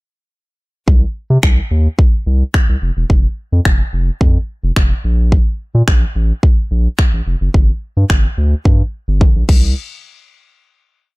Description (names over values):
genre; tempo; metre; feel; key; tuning
dance-pop; 108 BPM; 4/4; straight; unclear; A4 = 440 Hz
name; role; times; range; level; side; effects
saturated sub bass; bass; 0.9-9.7 s; E1 to C3; -14 LUFS; equal; sidechain pumping
pop drum kit; drums; 0.9-9.6 s; crash cymbal, finger snaps, kick drum, toms; -12 LUFS; equal; none
room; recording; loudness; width
little or no reverb; dark, warm production; -12 LUFS; side -24 dB against mid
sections
0.9-9.8 verse; 9.8-11.2 final hit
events
drum fill 9.2-9.8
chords
none